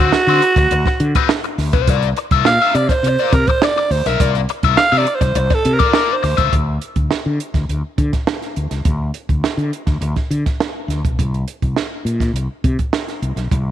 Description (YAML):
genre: funk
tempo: 103 BPM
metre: 4/4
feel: straight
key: unclear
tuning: A4 = 439 Hz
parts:
  - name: raspy alto saxophone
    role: melody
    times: 0.0-6.5 s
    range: F#4 to F5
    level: -16 LUFS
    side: right 2 dB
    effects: none
  - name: overdriven electric guitar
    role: accompaniment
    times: 0.0-6.5 s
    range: C4 to E5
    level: -20 LUFS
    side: left 13 dB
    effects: wah
  - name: mellow fretless electric bass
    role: bass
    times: 0.0-13.7 s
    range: B1 to D3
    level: -18 LUFS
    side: left 1 dB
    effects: none
  - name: compact cocktail drum kit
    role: drums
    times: 0.1-13.7 s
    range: hi-hat, kick drum, snare drum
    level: -19 LUFS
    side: right 2 dB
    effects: none
room: light reverb, studio reverb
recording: 1960s-style stereo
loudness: -14 LUFS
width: side -11 dB against mid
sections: 0.0-6.5 A section; 6.5-13.7 B section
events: alto saxophone solo 0.0-6.5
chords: 0.0 D6; 1.9 C9sus4; 6.5 N.C.